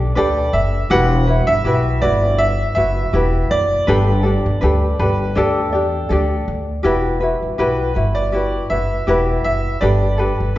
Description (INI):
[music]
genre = acoustic pop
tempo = 81 BPM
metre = 4/4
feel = swing 55% on 16ths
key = unclear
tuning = A4 = 438 Hz
[part]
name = bright upright piano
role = melody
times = 0.0-10.6 s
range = A4 to F#5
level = -21 LUFS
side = right 1 dB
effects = none
[part]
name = ukulele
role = accompaniment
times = 0.0-10.6 s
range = D4 to D5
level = -19 LUFS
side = left 1 dB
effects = none
[part]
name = upright bass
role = bass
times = 0.0-10.6 s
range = E1 to E2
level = -18 LUFS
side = equal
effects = none
[sound]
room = wet recital hall reverb, RT60 1.7 s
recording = recorded in a church or concert hall, nothing above 7.6 kHz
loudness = -15 LUFS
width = side -15 dB against mid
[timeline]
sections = 0.0-6.8 A section; 6.8-10.6 B section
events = none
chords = 0.0 Gadd9; 0.9 Emadd9; 3.9 Gadd9; 5.4 Dsus4; 6.8 Emadd9; 9.8 Gadd9